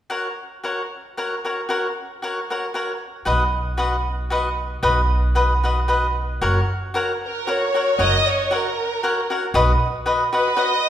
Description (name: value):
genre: mexican folk, mariachi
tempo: 115 BPM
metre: 3/4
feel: swing 54% on 8ths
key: F# major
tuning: A4 = 440 Hz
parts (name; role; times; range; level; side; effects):
- cavaquinho; accompaniment; 0.1-10.7 s; F#4 to F#5; -21 LUFS; left 1 dB; none
- upright bass; bass; 3.3-9.7 s; F#1 to B1; -22 LUFS; equal; none
- rich studio violin section; melody; 7.3-10.9 s; A#4 to D#5; -20 LUFS; equal; none
room: wet recital hall reverb, RT60 1.5 s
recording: recorded in a church or concert hall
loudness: -19 LUFS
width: side -10 dB against mid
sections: 0.1-6.4 A section; 6.4-10.9 B section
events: none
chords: 0.1 F#; 3.3 B; 6.4 F#; 9.5 B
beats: | 0.11 0.64 1.17 | 1.70 2.22 2.75 | 3.27 3.79 4.31 | 4.84 5.36 5.89 | 6.42 6.95 7.47 | 8.00 8.52 9.03 | 9.55 10.06 10.58